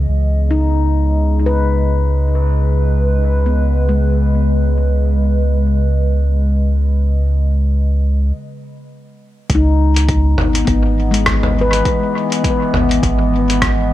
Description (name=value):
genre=ambient dub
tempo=102 BPM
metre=4/4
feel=swing 58% on 16ths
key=C# minor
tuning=A4 = 440 Hz
part: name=warbly tape-like pad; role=sustained chords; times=0.0-13.9 s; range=C#3 to D#5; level=-21 LUFS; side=left 1 dB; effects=chorus, built-in reverb
part: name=warm sub bass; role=bass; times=0.0-13.9 s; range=G#1 to C#2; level=-14 LUFS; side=equal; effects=tube saturation
part: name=handpan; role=arpeggios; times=0.5-5.3, 9.5-13.0 s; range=G#3 to B4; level=-21 LUFS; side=left 4 dB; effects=low-pass filter, dub echo
part: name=electronic kick drum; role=drums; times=9.5-13.8 s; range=none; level=-20 LUFS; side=equal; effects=overdrive
part: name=lo-fi sampler-style drum kit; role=drums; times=9.5-13.8 s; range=hi-hat, rim click, toms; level=-20 LUFS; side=equal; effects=low-pass filter on hats, low-pass filter on toms, low-pass filter on snare, low-pass filter on room, dub echo
room=light reverb, digital ambience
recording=echo-heavy mix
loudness=-13 LUFS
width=side -14 dB against mid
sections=0.0-9.5 A section; 9.5-13.9 B section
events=filter sweep on handpan 0.0-9.5; break 8.3-9.5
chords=0.1 G#m/C#; 9.5 C#m9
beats=| 0.09 0.68 1.26 1.85 | 2.44 3.03 3.62 4.21 | 4.79 5.38 5.97 6.56 | 7.15 7.74 8.32 8.91 | 9.50 10.09 10.68 11.26 | 11.85 12.44 13.03 13.62